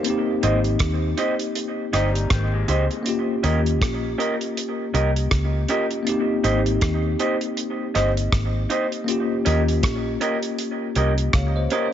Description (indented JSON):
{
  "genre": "lovers rock reggae",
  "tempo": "80 BPM",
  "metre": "4/4",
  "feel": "swing 59% on 16ths",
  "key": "Ab major",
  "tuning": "A4 = 440 Hz",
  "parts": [
    { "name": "bell-like tine electric piano", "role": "accompaniment", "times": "0.0-11.9 s", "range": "Bb3 to F5", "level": "-25 LUFS", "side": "left 2 dB", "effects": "fast stereo tremolo, tape echo" },
    { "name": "damped 70s drum kit", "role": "drums", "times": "0.0-11.9 s", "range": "hi-hat, kick drum, rim click", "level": "-25 LUFS", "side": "right 1 dB", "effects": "none" },
    { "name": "electric guitar through a small old amp", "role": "stabs", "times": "0.4-11.9 s", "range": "Db4 to Eb5", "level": "-26 LUFS", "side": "right 2 dB", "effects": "tape echo" },
    { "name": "vintage muted fingered electric bass", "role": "bass", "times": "0.4-11.7 s", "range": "G1 to Eb2", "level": "-22 LUFS", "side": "equal", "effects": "none" },
    { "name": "electric guitar through a small old amp", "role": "arpeggios", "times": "1.9-3.0 s", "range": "C3 to Eb4", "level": "-32 LUFS", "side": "left 4 dB", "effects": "none" }
  ],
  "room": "light reverb",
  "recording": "nothing above 7.5 kHz",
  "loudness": "-20 LUFS",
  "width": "side -10 dB against mid",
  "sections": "0.0-11.9 A section",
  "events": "none",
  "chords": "0.1 Abmaj7; 3.1 Eb7; 6.1 Abmaj7; 9.1 Eb7"
}